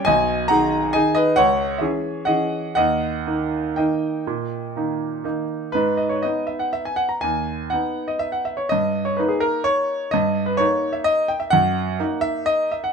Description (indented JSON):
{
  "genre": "classical, piano waltz",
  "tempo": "117-143 BPM",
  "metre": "3/4",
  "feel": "rubato",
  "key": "G# minor",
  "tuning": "A4 = 440 Hz",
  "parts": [
    { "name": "clear concert grand piano", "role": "solo", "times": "0.0-12.9 s", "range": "B1 to A#5", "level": "-19 LUFS", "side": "equal", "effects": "none" }
  ],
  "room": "light reverb",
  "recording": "minimal, uncompressed stereo recording",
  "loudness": "-19 LUFS",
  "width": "side -6 dB against mid",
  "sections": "0.0-5.7 A section; 5.7-12.9 B section",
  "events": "none",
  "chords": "0.1 G#m/B; 1.4 C#m; 2.8 D#; 5.7 G#m; 8.7 D#/G; 11.5 D#m/F#",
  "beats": "| 0.07 0.50 0.94 | 1.38 1.81 2.28 | 2.77 3.27 3.77 | 4.27 4.75 5.24 | 5.73 6.23 6.74 | 7.23 7.72 8.22 | 8.71 9.18 9.67 | 10.14 10.60 11.08 | 11.54 12.00 12.50"
}